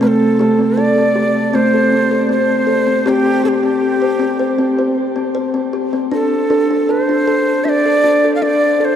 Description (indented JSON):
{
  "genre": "world meditative, meditative tuned percussion",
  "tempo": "79 BPM",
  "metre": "4/4",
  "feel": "straight",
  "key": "unclear",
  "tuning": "A4 = 440 Hz",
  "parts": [
    { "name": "breathy Native American-style cedar flute", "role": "melody", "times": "0.0-9.0 s", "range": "G4 to F5", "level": "-16 LUFS", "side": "right 1 dB", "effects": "shimmer reverb, diffuse ambient delay" },
    { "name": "kalimba", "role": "arpeggios", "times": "0.0-9.0 s", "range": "A3 to C5", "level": "-15 LUFS", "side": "left 1 dB", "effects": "shimmer reverb, diffuse ambient delay" }
  ],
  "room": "wet cathedral reverb, RT60 6.7 s",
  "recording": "in a vast, echoing space, cassette tape",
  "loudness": "-12 LUFS",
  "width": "side -9 dB against mid",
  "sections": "0.0-9.0 A section",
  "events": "none",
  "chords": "0.0 Am; 3.1 C5; 6.1 D5"
}